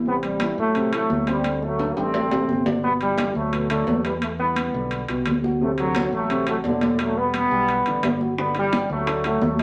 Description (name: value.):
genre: latin, salsa.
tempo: 173 BPM.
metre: 4/4.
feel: straight.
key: G major.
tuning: A4 = 443 Hz.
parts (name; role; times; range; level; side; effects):
dark grand piano; accompaniment; 0.0-9.6 s; B2 to D5; -31 LUFS; equal; none.
fingered electric bass; bass; 0.0-9.6 s; E1 to A2; -33 LUFS; equal; none.
mellow trombone section; melody; 0.1-9.6 s; A2 to C4; -25 LUFS; equal; none.
congas; percussion; 0.1-9.6 s; none; -28 LUFS; equal; none.
timbales; percussion; 0.2-9.6 s; none; -32 LUFS; equal; none.
bongos; percussion; 8.4-9.6 s; none; -32 LUFS; equal; none.
room: wet studio reverb, RT60 0.8 s.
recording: none.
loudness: -23 LUFS.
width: mono.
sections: 0.0-9.6 A section.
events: drum fill 1.8-2.8.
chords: 0.1 Am7; 1.4 D7sus4; 2.8 Gmaj9; 4.2 Em7; 5.6 D7; 7.0 Em9; 8.4 G5.